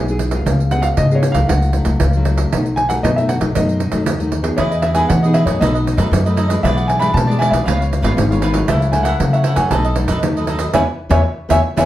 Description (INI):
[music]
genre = samba and choro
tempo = 117 BPM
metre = 4/4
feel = straight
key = E major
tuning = A4 = 440 Hz
[part]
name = dark grand piano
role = melody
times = 0.0-11.9 s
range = C#5 to B5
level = -20 LUFS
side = equal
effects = none
[part]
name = nylon-string guitar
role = accompaniment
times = 0.0-11.8 s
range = F#2 to G#4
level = -22 LUFS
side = left 1 dB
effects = none
[part]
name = upright bass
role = bass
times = 0.0-11.9 s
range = G#1 to E3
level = -17 LUFS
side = equal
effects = none
[part]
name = pandeiro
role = percussion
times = 0.1-11.9 s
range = none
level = -21 LUFS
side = right 4 dB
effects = none
[part]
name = cavaquinho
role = accompaniment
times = 4.6-11.9 s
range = D#4 to F#5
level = -23 LUFS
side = right 1 dB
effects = none
[sound]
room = wet studio reverb, RT60 0.7 s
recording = heard from further back in the room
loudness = -13 LUFS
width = side -14 dB against mid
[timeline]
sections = 0.0-11.9 A section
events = band accent 10.7-11.9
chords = 0.5 C#7; 1.5 F#m7/C#; 2.5 B7; 4.6 Emaj7; 5.6 B7; 6.6 E7/B; 7.7 C#7; 8.7 F#m7/C#; 9.7 B7; 10.7 E6